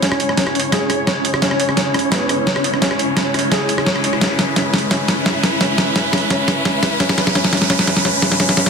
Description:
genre	half-time drum and bass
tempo	172 BPM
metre	4/4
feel	half-time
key	C# minor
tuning	A4 = 440 Hz
part	dark symphonic cello section	sustained chords	0.0-8.7 s	C#3 to C#5	-22 LUFS	left 1 dB	vintage 12-bit sampler grit
part	felt-muted upright piano	arpeggios	0.0-8.7 s	B3 to C#5	-22 LUFS	equal	low-pass filter, ping-pong delay
part	boom bap sampler-style drum kit	drums	0.0-8.7 s	hi-hat, rim click, snare drum	-17 LUFS	equal	small room ambience
part	riser	sound effects	0.3-8.7 s	none	-23 LUFS	equal	none
part	flickering grainy texture	texture	0.0-8.7 s	C#4 to E5	-25 LUFS	right 1 dB	built-in reverb
room	light reverb, small room ambience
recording	dense, heavily limited modern master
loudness	-14 LUFS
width	side -5 dB against mid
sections	0.0-8.7 A section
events	build-up 0.0-8.7; drum fill 0.0-8.7; riser 0.3-8.7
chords	0.0 C#m

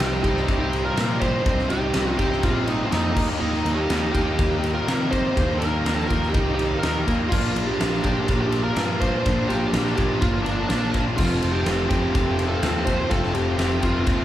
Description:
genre	classic rock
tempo	123 BPM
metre	4/4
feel	straight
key	unclear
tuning	A4 = 439 Hz
part	bluesy overdriven lead guitar	melody	0.0-14.2 s	C4 to C5	-26 LUFS	right 2 dB	distortion
part	lightly driven lead guitar	second line	0.0-14.2 s	A3 to G4	-31 LUFS	right 2 dB	none
part	tonewheel organ	sustained chords	0.0-14.2 s	C4 to Eb5	-37 LUFS	equal	none
part	distorted electric guitar	riff	0.0-14.2 s	F2 to Eb4	-32 LUFS	right 6 dB	overdrive
part	thick fuzz guitar	riff	0.0-14.2 s	F2 to Eb4	-30 LUFS	equal	distortion
part	tight distorted guitar	riff	0.0-14.2 s	F2 to Eb4	-29 LUFS	left 7 dB	distortion
part	fuzz picked electric bass	bass	0.0-14.2 s	F1 to C3	-27 LUFS	equal	overdrive
part	huge arena drum kit	drums	0.0-14.2 s	crash cymbal, kick drum, ride cymbal, snare drum	-25 LUFS	equal	none
room	moderate large studio reverb, RT60 0.8 s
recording	band playing live in one room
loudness	-20 LUFS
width	side -12 dB against mid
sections	0.0-14.2 A section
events	none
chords	0.0 Cm; 3.2 Eb; 7.3 Bb; 11.2 F

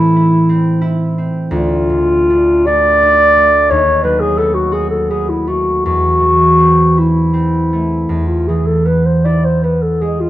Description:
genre	classical, romantic duo for clarinet and harp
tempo	50-60 BPM (dotted quarters)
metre	12/8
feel	rubato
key	A minor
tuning	A4 = 438 Hz
part	dark clarinet	melody	0.0-10.3 s	E4 to D5	-12 LUFS	left 1 dB	none
part	concert harp	accompaniment	0.0-10.3 s	D2 to F#4	-14 LUFS	right 1 dB	none
room	moderate recital hall reverb, RT60 1.4 s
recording	dark, warm production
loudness	-10 LUFS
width	side -14 dB against mid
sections	0.0-10.3 A section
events	none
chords	0.0 Am; 1.5 Dm; 3.7 B7/D#; 5.8 Am/E; 8.1 E

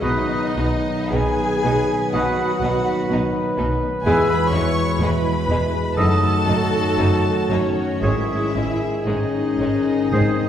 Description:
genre	classical, slow romantic movement for symphony orchestra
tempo	52-64 BPM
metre	4/4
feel	rubato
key	unclear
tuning	A4 = 440 Hz
part	warm chamber violin section	melody	0.0-10.5 s	C#5 to C#6	-27 LUFS	left 2 dB	none
part	clear oboe	second line	0.0-10.5 s	B4 to D#5	-29 LUFS	right 2 dB	none
part	hollow small flute group	second line	0.0-10.5 s	D#6 to E6	-29 LUFS	equal	none
part	rich chamber violin section	second line	0.0-10.2 s	G#3 to E4	-31 LUFS	left 2 dB	none
part	warm clarinet	second line	0.0-10.5 s	F#4 to A4	-31 LUFS	left 1 dB	none
part	rich chamber viola section	accompaniment	0.0-10.5 s	C#4 to C#5	-26 LUFS	right 1 dB	none
part	mellow French horn section	sustained chords	0.0-10.5 s	G#3 to E4	-27 LUFS	left 3 dB	none
part	warm trombone section	sustained chords	0.0-10.5 s	G#2 to F#3	-28 LUFS	right 2 dB	none
part	concert harp	arpeggios	0.0-10.5 s	E2 to D#5	-27 LUFS	left 3 dB	none
part	mellow trumpet section	stabs	0.0-10.5 s	F#4 to B4	-27 LUFS	equal	none
part	clear chamber cello section	bass	0.0-10.2 s	E2 to B2	-28 LUFS	right 2 dB	none
part	rich chamber double bass section	bass	0.0-10.2 s	E1 to B1	-27 LUFS	right 2 dB	none
part	timpani	percussion	10.1-10.5 s	G#2	-21 LUFS	right 1 dB	none
room	wet concert hall reverb, RT60 1.8 s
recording	heard from further back in the room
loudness	-17 LUFS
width	side -9 dB against mid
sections	0.0-10.5 A section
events	none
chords	0.0 B; 4.1 E; 6.0 D#dim/F#; 8.0 G#sus4

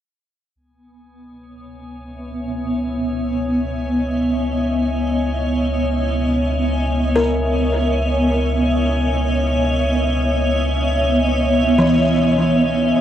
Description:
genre	ambient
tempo	free time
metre	none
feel	none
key	C# dorian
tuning	A4 = 440 Hz
part	granular cloud pad	sustained chords	1.9-13.0 s	B3 to E5	-18 LUFS	equal	built-in reverb
part	warm sub bass	bass	0.6-13.0 s	C#2	-23 LUFS	equal	tube saturation
part	drifting glass-harmonics texture	texture	1.8-13.0 s	G#5	-32 LUFS	left 1 dB	chorus, built-in reverb
part	buzzing kalimba	arpeggios	7.2-12.7 s	E3 to A#4	-22 LUFS	left 1 dB	diffuse ambient delay
room	wet huge ambient reverb, RT60 7.7 s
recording	worn, warbling old tape, cassette tape, warbly pitch drift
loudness	-16 LUFS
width	side -10 dB against mid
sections	0.6-13.0 A section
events	fade-in on sub bass 0.6-13.0; fade-in on synth texture 0.6-13.0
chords	0.6 C#m9

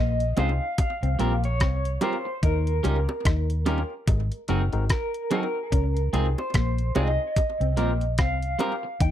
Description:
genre	lovers rock reggae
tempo	73 BPM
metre	4/4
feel	swing 58% on 16ths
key	unclear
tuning	A4 = 440 Hz
part	electric guitar through a small old amp	melody	0.0-9.1 s	Bb4 to G5	-30 LUFS	right 1 dB	tremolo, tape echo
part	electric guitar through a small old amp	riff	0.0-9.1 s	Gb3 to Eb4	-34 LUFS	left 9 dB	slapback echo
part	vintage muted fingered electric bass	bass	0.0-9.1 s	Gb1 to Eb2	-25 LUFS	equal	none
part	detuned 8-bit digital drum machine	drums	0.2-9.1 s	hi-hat, kick drum, rim click	-24 LUFS	equal	none
part	barky tine electric piano	accompaniment	0.4-8.7 s	C4 to Bb4	-32 LUFS	left 5 dB	slapback echo
part	electric guitar at the edge of break-up	stabs	0.4-8.9 s	Gb3 to C5	-29 LUFS	right 8 dB	none
part	bongos	percussion	0.4-8.8 s	none	-33 LUFS	right 2 dB	slapback echo
room	little or no reverb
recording	dry, close 1970s-style studio recording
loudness	-22 LUFS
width	side -11 dB against mid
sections	0.0-9.1 A section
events	none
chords	0.0 Dbmaj7; 0.8 C7sus4; 2.4 Eb7; 4.1 Ab7; 5.7 Dbmaj7; 7.4 C7sus4

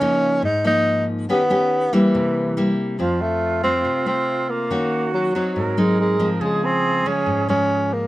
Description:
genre	bossa nova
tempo	140 BPM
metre	4/4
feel	straight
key	unclear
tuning	A4 = 442 Hz
part	breathy tenor saxophone	melody	0.0-8.1 s	Fb3 to Eb4	-20 LUFS	equal	none
part	nylon-string guitar	accompaniment	0.0-8.1 s	F2 to G4	-22 LUFS	left 1 dB	none
part	breathy jazz flute	second line	3.0-7.9 s	F4 to Bb4	-26 LUFS	right 5 dB	none
room	light reverb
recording	close, detailed microphones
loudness	-17 LUFS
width	side -16 dB against mid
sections	0.0-3.0 A section; 3.0-8.1 B section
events	none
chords	0.0 Db69; 1.3 Eb7b13; 2.1 C7; 3.0 F; 4.7 Ebm7; 5.6 Ab7; 6.4 Dbmaj7

